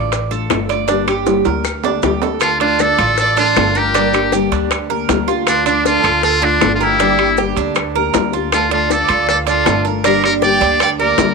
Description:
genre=latin, Cuban son and guajira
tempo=157 BPM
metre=4/4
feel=straight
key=D minor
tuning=A4 = 440 Hz
part: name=nylon-string guitar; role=accompaniment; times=0.0-11.3 s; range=D3 to G4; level=-21 LUFS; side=left 14 dB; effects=none
part: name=Cuban tres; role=arpeggios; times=0.0-11.3 s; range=D4 to D5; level=-19 LUFS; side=right 14 dB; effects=none
part: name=upright bass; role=bass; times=0.0-11.3 s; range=G1 to D2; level=-24 LUFS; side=left 1 dB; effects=none
part: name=bongos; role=percussion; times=0.1-11.3 s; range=none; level=-22 LUFS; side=left 16 dB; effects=none
part: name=maracas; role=percussion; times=0.1-11.3 s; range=none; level=-30 LUFS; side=right 16 dB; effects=none
part: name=timbales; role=percussion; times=0.1-11.3 s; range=none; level=-23 LUFS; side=right 15 dB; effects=none
part: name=claves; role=percussion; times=0.5-11.0 s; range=none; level=-26 LUFS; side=left 14 dB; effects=none
part: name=trumpet with metal mute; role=melody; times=2.4-11.3 s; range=D4 to D5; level=-15 LUFS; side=left 1 dB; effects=none
part: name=rich studio violin section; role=second line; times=2.4-11.3 s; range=F4 to G5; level=-22 LUFS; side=right 13 dB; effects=none
room=light reverb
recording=1960s-style stereo with parts hard left and right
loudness=-12 LUFS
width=side -4 dB against mid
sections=0.0-2.4 A section; 2.4-11.3 B section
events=drum fill 1.3-2.4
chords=0.0 Dm; 0.9 Gm; 2.4 Dm; 3.9 Gm; 5.5 Dm; 7.0 Gm; 8.5 Dm; 10.0 Gm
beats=0.12 0.50 | 0.89 1.27 1.65 2.03 | 2.42 2.80 3.18 3.56 | 3.94 4.33 4.71 5.09 | 5.47 5.85 6.23 6.62 | 7.00 7.38 7.76 8.14 | 8.52 8.90 9.28 9.66 | 10.04 10.43 10.81 11.19

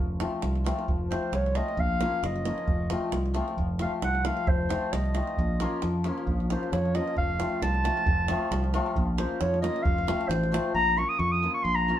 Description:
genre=balkan folk, Balkan wedding band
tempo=134 BPM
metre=2/4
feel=swing 55% on 16ths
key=unclear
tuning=A4 = 439 Hz
part: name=hammered dulcimer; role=accompaniment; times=0.0-12.0 s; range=F3 to F4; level=-32 LUFS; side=left 3 dB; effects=none
part: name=modern bright fingered electric bass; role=bass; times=0.0-11.9 s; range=F1 to F2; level=-29 LUFS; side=equal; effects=none
part: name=davul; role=percussion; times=0.2-10.7 s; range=none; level=-31 LUFS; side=right 2 dB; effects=none
part: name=mellow clarinet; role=melody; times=1.1-12.0 s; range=C5 to Eb6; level=-29 LUFS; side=equal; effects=none
room=moderate studio reverb, RT60 0.6 s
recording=band playing live in one room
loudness=-25 LUFS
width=side -11 dB against mid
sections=0.0-10.8 A section; 10.8-12.0 B section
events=clarinet solo 0.0-10.8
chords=0.0 F; 1.8 Bbm; 2.7 F; 5.4 Bbm; 7.2 F; 9.0 Bbm; 9.9 F; 10.8 Bbm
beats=0.43 | 0.88 1.33 | 1.78 2.23 | 2.68 3.13 | 3.58 4.03 | 4.48 4.93 | 5.38 5.83 | 6.28 6.73 | 7.17 7.62 | 8.07 8.52 | 8.96 9.41 | 9.86 10.31 | 10.75 11.20 | 11.65

